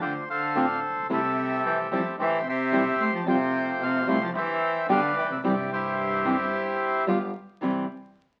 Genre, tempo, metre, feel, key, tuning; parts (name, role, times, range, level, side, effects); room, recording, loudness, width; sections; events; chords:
tango; 110 BPM; 4/4; rubato; C major; A4 = 440 Hz
bandoneon; melody; 0.0-7.1 s; E4 to C6; -29 LUFS; equal
warm cello; second line; 0.0-7.0 s; G2 to A3; -32 LUFS; equal
bandoneon; stabs; 0.0-7.9 s; A3 to G4; -35 LUFS; equal
upright bass; bass; 0.0-7.9 s; E1 to F2; -45 LUFS; equal
nylon-string guitar; accompaniment; 0.6-7.8 s; B2 to G4; -29 LUFS; equal
moderate studio reverb, RT60 0.8 s; very old 78 rpm record, vinyl crackle; -26 LUFS; mono
0.0-7.6 A section
0.0 Dm7; 1.1 C6; 2.2 Am7; 3.3 Fadd9; 4.4 C/G; 4.9 G; 5.4 C; 7.1 G7; 7.6 C